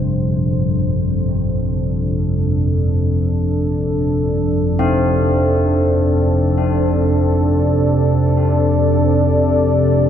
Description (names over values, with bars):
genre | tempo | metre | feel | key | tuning
dark ambient drone | free time | none | none | unclear | A4 = 440 Hz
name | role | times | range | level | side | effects
dark analog pad | sustained chords | 0.0-10.1 s | D4 to D5 | -20 LUFS | right 1 dB | chorus
carillon bells | arpeggios | 0.0-10.1 s | G2 to C4 | -22 LUFS | left 2 dB | ping-pong delay
analog drone | drone | 0.0-10.1 s | F2 to C3 | -16 LUFS | equal | chorus
room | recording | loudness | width
wet cathedral reverb, RT60 5.3 s | none | -14 LUFS | side -9 dB against mid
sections
0.0-10.1 A section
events
fade-in on analog synth pad 0.0-10.1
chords
0.0 Am